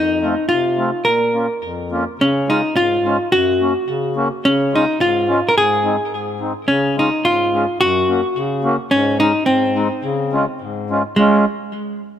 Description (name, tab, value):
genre	alpine folk, alpine dance band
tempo	107 BPM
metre	2/4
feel	rubato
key	Db major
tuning	A4 = 440 Hz
part	hollow-body jazz guitar	melody	0.0-11.4 s	Ab3 to Bb4	-16 LUFS	equal	digital delay
part	mellow accordion	accompaniment	0.0-11.5 s	F2 to Gb4	-20 LUFS	left 2 dB	none
room	moderate echo chamber reverb, RT60 1.9 s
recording	none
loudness	-15 LUFS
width	side -10 dB against mid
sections	0.0-2.2 A section; 2.2-11.2 B section; 11.2-12.2 C section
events	none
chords	0.0 F7; 1.1 Bbm; 2.2 Db; 3.3 Gb; 4.4 Db; 5.5 Ab; 6.7 Db; 7.8 Gb; 8.9 Absus4; 9.5 Ab; 10.0 Db